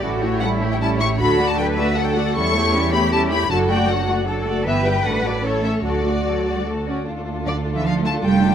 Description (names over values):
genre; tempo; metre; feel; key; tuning
quick classical-period movement for string orchestra; 154 BPM; 3/4; straight; D major; A4 = 439 Hz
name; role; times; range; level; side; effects
rich studio violin section; second line; 0.0-8.5 s; E4 to D5; -25 LUFS; equal; none
rich studio viola section; accompaniment; 0.0-8.5 s; E3 to F#4; -24 LUFS; left 1 dB; none
rich studio cello section; bass; 0.0-8.5 s; D3 to B4; -24 LUFS; right 2 dB; none
rich studio double bass section; bass; 0.0-8.5 s; F1 to E2; -24 LUFS; right 3 dB; none
warm studio violin section; melody; 0.4-8.5 s; C#5 to C#6; -24 LUFS; left 4 dB; none
room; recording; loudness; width
light reverb; close, detailed microphones; -17 LUFS; side -8 dB against mid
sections
0.0-7.1 A section; 7.1-8.5 B section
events
none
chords
0.0 A7; 1.2 D; 2.4 A7/E; 3.5 D/F#; 4.7 Em/G; 5.0 D/A; 5.4 A; 5.8 D; 7.1 Dm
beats
| 0.02 0.41 0.80 | 1.19 1.58 1.97 | 2.35 2.74 3.12 | 3.50 3.89 4.27 | 4.66 5.05 5.44 | 5.85 6.26 6.66 | 7.07 7.46 7.85 | 8.24